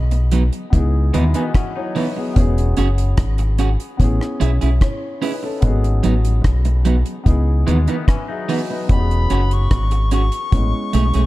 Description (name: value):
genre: lovers rock reggae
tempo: 74 BPM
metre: 4/4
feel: straight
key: E major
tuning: A4 = 439 Hz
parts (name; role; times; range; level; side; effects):
- warm baby grand piano; accompaniment; 0.0-11.3 s; G#3 to B5; -26 LUFS; left 2 dB; tape echo
- deep dub fingered electric bass; bass; 0.0-11.3 s; E1 to D#2; -16 LUFS; equal; none
- electric guitar at the edge of break-up; stabs; 0.1-11.2 s; E3 to G#4; -23 LUFS; right 4 dB; none
- deep reggae drum kit; drums; 0.1-11.3 s; hi-hat, kick drum, rim click; -18 LUFS; equal; none
- twangy electric guitar; arpeggios; 1.1-2.3, 7.7-8.9 s; B2 to D#4; -30 LUFS; left 6 dB; tremolo, tape echo
- bright reedy soprano recorder; melody; 8.9-11.3 s; B5 to C#6; -26 LUFS; left 4 dB; tape echo
room: small room ambience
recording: dark, warm production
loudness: -15 LUFS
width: side -17 dB against mid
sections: 0.0-11.3 A section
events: grand piano fill 0.7-2.4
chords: 0.0 G#m7; 0.7 C#m9; 2.4 E69; 4.0 Amaj7; 5.6 G#m7; 7.3 C#m9; 8.9 E69; 10.5 Amaj7